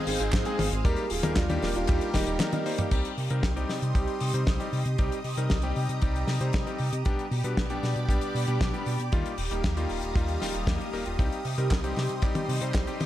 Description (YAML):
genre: italo disco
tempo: 116 BPM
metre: 4/4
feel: straight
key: C minor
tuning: A4 = 440 Hz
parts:
  - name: lush unison pad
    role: sustained chords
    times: 0.0-13.1 s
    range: Ab3 to Eb6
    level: -35 LUFS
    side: right 3 dB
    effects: chorus, phaser
  - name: clear electric grand piano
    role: stabs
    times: 0.0-13.1 s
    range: G3 to C5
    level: -33 LUFS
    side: left 3 dB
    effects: low-pass filter, digital delay
  - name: clear concert grand piano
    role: melody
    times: 0.1-2.9 s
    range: G3 to Bb4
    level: -32 LUFS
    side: right 2 dB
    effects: ping-pong delay
  - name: chorused synth bass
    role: bass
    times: 0.1-13.1 s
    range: Eb1 to C3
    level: -30 LUFS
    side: equal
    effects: none
  - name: damped 70s drum kit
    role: drums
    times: 0.1-13.1 s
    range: crash cymbal, handclaps, hi-hat, snare drum, toms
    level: -32 LUFS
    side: left 2 dB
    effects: studio ambience, gated reverb
  - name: kick drum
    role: drums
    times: 0.3-12.8 s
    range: none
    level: -27 LUFS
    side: equal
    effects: studio ambience
room: light reverb, small room reverb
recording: none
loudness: -25 LUFS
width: side -13 dB against mid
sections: 0.0-2.9 A section; 2.9-13.1 B section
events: drum fill 2.4-2.9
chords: 0.0 Ab; 0.8 Eb; 2.9 Cm; 7.1 G/B; 9.1 Ebadd9; 11.2 Cm